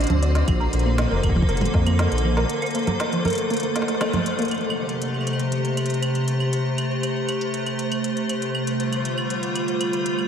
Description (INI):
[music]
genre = IDM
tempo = 119 BPM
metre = 4/4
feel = straight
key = A phrygian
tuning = A4 = 440 Hz
[part]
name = icy glass pad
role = sustained chords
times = 0.0-10.3 s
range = C3 to A4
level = -24 LUFS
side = equal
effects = chorus, built-in reverb, vintage 12-bit sampler grit
[part]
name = warbly dusty pluck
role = arpeggios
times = 0.0-4.5 s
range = F3 to D5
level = -27 LUFS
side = right 2 dB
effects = wide subtle chorus, diffuse ambient delay
[part]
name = dark detuned saw bass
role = bass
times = 0.0-2.4 s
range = F1 to F2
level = -21 LUFS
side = equal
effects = tube saturation
[part]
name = organic electronic drum kit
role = drums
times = 0.0-10.3 s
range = claves, congas, hi-hat, snare drum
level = -29 LUFS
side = right 1 dB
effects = overdrive, ping-pong delay
[part]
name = flickering grainy texture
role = texture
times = 0.0-10.3 s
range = C5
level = -33 LUFS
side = left 1 dB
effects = built-in reverb, sidechain pumping
[part]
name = electronic kick drum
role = drums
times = 0.5-1.8 s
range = none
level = -22 LUFS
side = equal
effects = overdrive
[sound]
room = wet huge ambient reverb, RT60 4.9 s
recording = dreamy mix soaked in reverb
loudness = -20 LUFS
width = side -8 dB against mid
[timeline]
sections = 0.0-4.5 A section; 4.5-10.3 B section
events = break 2.5-4.5; band accent 4.0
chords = 0.5 Bbmaj7; 4.5 Am7; 8.5 F69